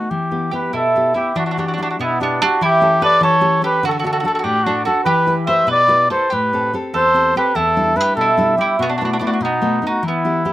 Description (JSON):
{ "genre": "italian folk, Italian serenade", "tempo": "96 BPM (dotted quarters)", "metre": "6/8", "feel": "straight", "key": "E minor", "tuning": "A4 = 440 Hz", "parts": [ { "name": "trumpet with cup mute", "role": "melody", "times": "0.0-10.5 s", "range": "D4 to E5", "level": "-17 LUFS", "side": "equal", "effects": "none" }, { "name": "nylon-string guitar", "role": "accompaniment", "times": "0.0-10.5 s", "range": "E2 to B4", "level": "-22 LUFS", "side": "left 2 dB", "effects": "none" }, { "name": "mandolin", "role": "second line", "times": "0.5-10.5 s", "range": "B3 to C5", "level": "-20 LUFS", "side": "right 3 dB", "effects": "none" } ], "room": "moderate small room reverb, RT60 0.5 s", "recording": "rough home demo mix", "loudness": "-14 LUFS", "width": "side -14 dB against mid", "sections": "0.0-1.4 A section; 1.4-10.5 A section", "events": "none", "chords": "0.1 Em; 1.4 Em7; 2.6 A7/E; 3.8 D; 5.1 Em; 6.3 Am7; 7.6 Em7; 8.8 B7sus4; 9.4 B7" }